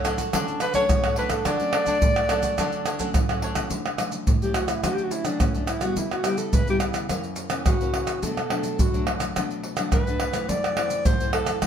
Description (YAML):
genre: samba and choro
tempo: 106 BPM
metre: 4/4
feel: straight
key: D major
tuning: A4 = 440 Hz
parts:
  - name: breathy alto saxophone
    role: melody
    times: 0.0-11.6 s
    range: C#4 to D5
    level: -26 LUFS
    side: equal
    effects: none
  - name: cavaquinho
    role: accompaniment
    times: 0.0-3.7 s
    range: D4 to F#5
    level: -30 LUFS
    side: right 3 dB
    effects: none
  - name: nylon-string guitar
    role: accompaniment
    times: 0.0-11.7 s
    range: F#2 to E4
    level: -30 LUFS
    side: left 2 dB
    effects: none
  - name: maracas, pandeiro, tamborim and surdo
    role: percussion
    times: 0.0-11.7 s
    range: none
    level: -24 LUFS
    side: right 1 dB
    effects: none
room: wet studio reverb, RT60 0.9 s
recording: band playing live in one room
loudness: -22 LUFS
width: side -8 dB against mid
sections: 0.0-3.7 A section; 3.7-11.7 B section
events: alto saxophone solo 3.7-11.7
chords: 0.0 Dmaj7; 6.0 C#m7b5; 7.1 F#7; 8.2 Bm7; 10.5 F#m7b5